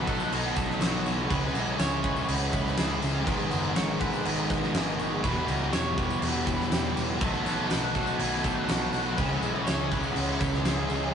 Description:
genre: rock, shoegaze and dream pop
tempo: 122 BPM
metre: 4/4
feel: straight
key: unclear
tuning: A4 = 439 Hz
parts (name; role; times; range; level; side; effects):
- string machine, violins; sustained chords; 0.0-11.1 s; G4 to B5; -42 LUFS; right 1 dB; none
- direct-recorded clean electric guitar; arpeggios; 0.0-11.1 s; F#4 to C#5; -38 LUFS; right 5 dB; none
- crunchy overdriven guitar; riff; 0.0-11.1 s; E2 to A4; -34 LUFS; left 5 dB; none
- overdriven electric guitar; riff; 0.0-11.1 s; G#2 to A4; -35 LUFS; right 5 dB; none
- tight distorted guitar; riff; 0.0-11.1 s; E2 to C#4; -32 LUFS; equal; distortion
- vintage muted picked electric bass; bass; 0.0-11.1 s; E1 to C#2; -34 LUFS; equal; none
- octave-fuzz lead guitar; melody; 0.1-9.6 s; B4 to G#5; -37 LUFS; right 1 dB; distortion, analog delay
- huge arena drum kit; drums; 0.1-11.0 s; crash cymbal, kick drum, snare drum; -30 LUFS; equal; none
- tambourine; percussion; 0.2-11.1 s; none; -49 LUFS; left 6 dB; none
room: moderate studio reverb, RT60 0.6 s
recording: rough rehearsal-room recording, tube saturation, nothing above 10.4 kHz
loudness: -25 LUFS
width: side -7 dB against mid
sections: 0.0-11.1 A section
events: none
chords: 0.0 B7; 1.3 C#m7; 3.3 G#m7; 5.2 Em6; 7.2 B7; 9.2 C#m7

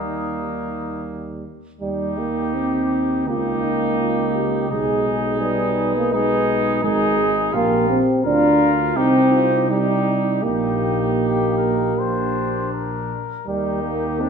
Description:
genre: classical, brass quintet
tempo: 76-85 BPM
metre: 4/4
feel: rubato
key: Eb major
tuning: A4 = 440 Hz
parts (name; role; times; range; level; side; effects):
- mellow cornet; melody; 0.0-14.3 s; Eb4 to C5; -26 LUFS; left 7 dB; none
- warm trumpet; second line; 0.0-14.3 s; Bb3 to F4; -26 LUFS; right 5 dB; none
- mellow French horn; accompaniment; 0.0-14.3 s; G3 to Cb5; -26 LUFS; left 3 dB; none
- mellow euphonium; accompaniment; 0.0-14.3 s; G3 to D4; -21 LUFS; right 2 dB; none
- mellow tuba; bass; 0.0-14.3 s; Ab1 to Eb2; -26 LUFS; right 3 dB; none
room: wet concert hall reverb, RT60 1.7 s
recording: minimal, uncompressed stereo recording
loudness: -18 LUFS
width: side -6 dB against mid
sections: 0.0-1.8 A section; 1.8-14.3 A section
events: none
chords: 0.0 Eb; 3.3 Eb7/Db; 4.7 Abm/Cb; 7.5 Bb; 9.0 Cm; 10.4 Eb/Bb; 13.5 Eb

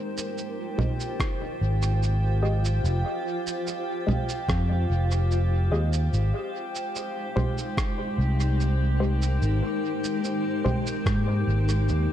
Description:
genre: ambient dub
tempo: 73 BPM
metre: 4/4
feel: straight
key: F minor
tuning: A4 = 440 Hz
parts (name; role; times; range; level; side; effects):
- granular cloud pad; sustained chords; 0.0-12.1 s; Ab3 to G5; -30 LUFS; equal; built-in reverb
- drifting glass-harmonics texture; texture; 0.0-12.1 s; G4 to G5; -36 LUFS; left 2 dB; chorus, built-in reverb
- electronic cabasa, congas and rim click; drums; 0.2-12.1 s; none; -31 LUFS; right 2 dB; studio reverb, dub echo
- filtered dub chord stab; stabs; 0.8-10.9 s; Ab3 to Eb5; -35 LUFS; left 2 dB; chorus, cassette tape, dub echo
- electronic kick drum; drums; 1.2-11.2 s; none; -28 LUFS; equal; overdrive, studio reverb
- fingered electric bass; bass; 1.6-12.1 s; F1 to Ab2; -22 LUFS; equal; none
room: digital ambience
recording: dark, warm production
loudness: -23 LUFS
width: side -11 dB against mid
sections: 0.0-12.1 A section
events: none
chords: 0.0 Fm9; 6.1 Abmaj7

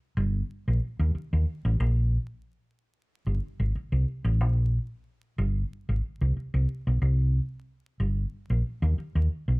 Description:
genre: funk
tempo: 92 BPM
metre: 4/4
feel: straight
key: unclear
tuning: A4 = 440 Hz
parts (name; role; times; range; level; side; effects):
- hollow-body short-scale fingered electric bass; solo; 0.2-9.6 s; G1 to Eb2; -24 LUFS; equal; none
room: moderate studio reverb, RT60 0.8 s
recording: vinyl crackle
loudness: -25 LUFS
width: side -26 dB against mid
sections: 0.0-9.6 A section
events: none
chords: none

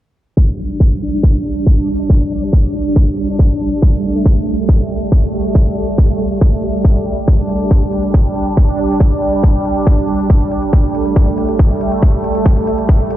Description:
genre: psychedelic trance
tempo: 139 BPM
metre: 4/4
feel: straight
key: unclear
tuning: A4 = 440 Hz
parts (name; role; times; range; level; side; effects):
- bubbling stepped-filter texture; sustained chords; 0.4-13.2 s; G3 to D4; -17 LUFS; right 1 dB; chorus, built-in reverb, sidechain pumping
- electronic kick drum; drums; 0.4-13.0 s; none; -10 LUFS; equal; none
- electronic hi-hat; drums; 7.3-13.2 s; none; -50 LUFS; left 2 dB; none
room: little or no reverb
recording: played on a big sound system in a bare room, large studio reverb, low-pass filter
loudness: -11 LUFS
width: side -13 dB against mid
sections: 0.4-13.2 A section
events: filter sweep 0.4-13.2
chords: 0.4 G5

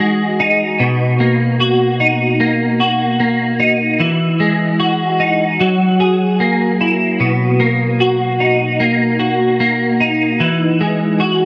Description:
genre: indie pop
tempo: 75 BPM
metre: 4/4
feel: swing 55% on 16ths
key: B major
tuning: A4 = 440 Hz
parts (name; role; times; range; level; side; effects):
- twelve-string electric guitar; solo; 0.0-11.5 s; B2 to G#4; -15 LUFS; equal; ensemble chorus, vibrato effect, analog delay
room: moderate plate reverb, RT60 3.6 s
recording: dreamy mix soaked in reverb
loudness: -15 LUFS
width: mono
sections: 0.0-7.2 A section; 7.2-11.5 A section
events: none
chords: 0.0 Emaj9; 0.8 Bmaj7; 4.0 Emaj9; 5.6 F#9; 7.2 Bmaj7; 10.4 Emaj9

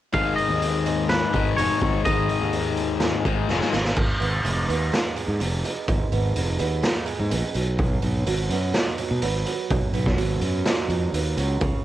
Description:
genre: quiet-loud alternative rock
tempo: 126 BPM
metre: 4/4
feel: straight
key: unclear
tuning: A4 = 439 Hz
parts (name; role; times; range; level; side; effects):
- twangy electric guitar; melody; 0.1-2.7 s; B4 to E#5; -25 LUFS; equal; none
- picked swing-style acoustic guitar; arpeggios; 0.1-11.8 s; G#2 to D#4; -30 LUFS; right 8 dB; cassette tape
- crunchy overdriven guitar; riff; 0.1-3.7 s; G#2 to G#3; -25 LUFS; left 8 dB; cassette tape
- fuzz fingered electric bass; bass; 0.1-11.7 s; E#1 to B2; -26 LUFS; equal; overdrive
- raw garage drum kit; drums; 0.1-11.7 s; crash cymbal, hi-hat, kick drum, snare drum; -25 LUFS; equal; cassette tape
room: small room ambience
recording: home recording on cassette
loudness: -21 LUFS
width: side -13 dB against mid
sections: 0.1-4.0 A section; 4.0-11.8 B section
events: drum fill 3.5-4.0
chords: 0.1 G#5; 4.0 G#m; 7.5 B

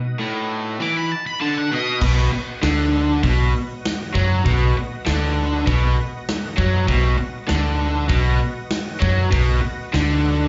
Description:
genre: blues rock power trio and southern rock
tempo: 99 BPM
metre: 4/4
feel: straight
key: B mixolydian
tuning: A4 = 440 Hz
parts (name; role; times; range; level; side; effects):
- overdriven tonewheel organ; sustained chords; 0.0-10.5 s; B3 to E5; -36 LUFS; equal; slow rotary speaker, chorus vibrato
- raw garage guitar; riff; 0.0-10.5 s; A2 to F#3; -24 LUFS; equal; overdrive, slapback echo
- octave-fuzz lead guitar; melody; 0.8-2.0 s; D#5 to D6; -27 LUFS; equal; wah, distortion, slapback echo, tape echo
- vintage muted fingered electric bass; bass; 2.0-10.5 s; B1 to F#2; -21 LUFS; equal; none
- big rock drum kit; drums; 2.0-10.1 s; crash cymbal, hi-hat, kick drum, snare drum; -27 LUFS; equal; none
room: light reverb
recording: live gig heard through the venue's PA, club reverb, nothing above 7.6 kHz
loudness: -20 LUFS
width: mono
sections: 0.0-2.0 A section; 2.0-10.5 B section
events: break 0.0-2.0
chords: 0.0 B

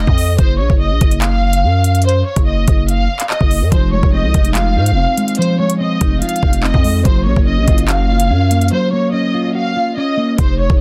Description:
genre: hip hop, drill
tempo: 144 BPM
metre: 4/4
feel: half-time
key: unclear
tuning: A4 = 440 Hz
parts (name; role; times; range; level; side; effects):
- warm studio violin section; melody; 0.0-10.8 s; C5 to F5; -22 LUFS; equal; low-pass filter, delay
- growling 808-style bass; bass; 0.0-10.8 s; F1 to Ab2; -17 LUFS; equal; none
- drill drum kit; drums; 0.1-10.8 s; handclaps, hi-hat, kick drum; -17 LUFS; equal; none
- mellow electric guitar; accompaniment; 3.7-10.4 s; F3 to Gb4; -20 LUFS; equal; low-pass filter
room: digital ambience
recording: dense, heavily limited modern master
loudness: -14 LUFS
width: mono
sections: 0.0-10.4 A section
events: break 8.7-10.4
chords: 0.4 Gbmaj7(no3); 3.7 Fm7; 7.1 Gbmaj7

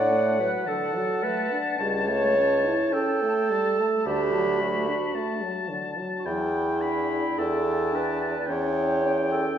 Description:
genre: classical, slow romantic movement for wind quintet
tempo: 54 BPM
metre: 4/4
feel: rubato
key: unclear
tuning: A4 = 440 Hz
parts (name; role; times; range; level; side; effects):
- silver concert flute; melody; 0.0-9.6 s; F#5 to A5; -35 LUFS; left 6 dB; none
- warm oboe; second line; 0.0-9.6 s; F#5 to B5; -31 LUFS; left 4 dB; none
- mellow French horn; accompaniment; 0.0-9.6 s; D3 to E4; -32 LUFS; left 1 dB; none
- mellow clarinet; accompaniment; 0.0-9.6 s; E4 to D5; -26 LUFS; right 3 dB; none
- clear bassoon; bass; 0.0-9.5 s; C#2 to A2; -27 LUFS; equal; none
room: wet recital hall reverb, RT60 1.7 s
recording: heard from further back in the room, nothing above 7.8 kHz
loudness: -22 LUFS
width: side -9 dB against mid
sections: 0.0-9.6 A section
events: none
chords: 0.0 D; 1.8 A7/C#; 4.1 D; 6.3 Em7; 8.5 C#dim/E

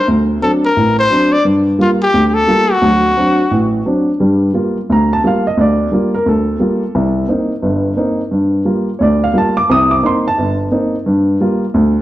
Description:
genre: jazz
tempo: 175 BPM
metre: 4/4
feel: swing 63% on 8ths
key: G minor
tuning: A4 = 441 Hz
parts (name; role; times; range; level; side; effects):
- clear trumpet; melody; 0.0-3.9 s; F4 to D5; -14 LUFS; left 2 dB; none
- warm upright piano; accompaniment; 0.1-12.0 s; G1 to Eb6; -12 LUFS; equal; none
room: wet large studio reverb, RT60 1.3 s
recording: dark, warm production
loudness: -11 LUFS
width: side -14 dB against mid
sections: 0.0-4.2 A section; 4.2-12.0 B section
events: none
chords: 0.1 D7; 1.4 Gm7; 2.8 D7; 4.2 Gm7; 6.9 Cm7; 8.3 Gm7; 9.7 Cm7; 11.1 Gm7

